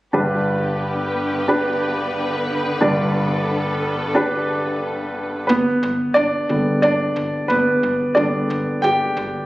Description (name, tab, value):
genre	pop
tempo	90 BPM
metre	4/4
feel	straight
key	G major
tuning	A4 = 440 Hz
part	warm grand piano	accompaniment	0.1-9.5 s	G1 to G5	-18 LUFS	equal	none
part	dark studio string section	sustained chords	0.1-5.5 s	D3 to B4	-25 LUFS	left 1 dB	none
part	slap-like FM bass	bass	5.5-9.4 s	G1	-32 LUFS	equal	none
room	moderate scoring stage reverb, RT60 1.8 s, small room ambience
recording	recorded on a phone in the room, club reverb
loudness	-17 LUFS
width	side -17 dB against mid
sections	0.1-5.5 A section; 5.5-9.5 B section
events	grand piano solo 5.5-9.5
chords	0.1 G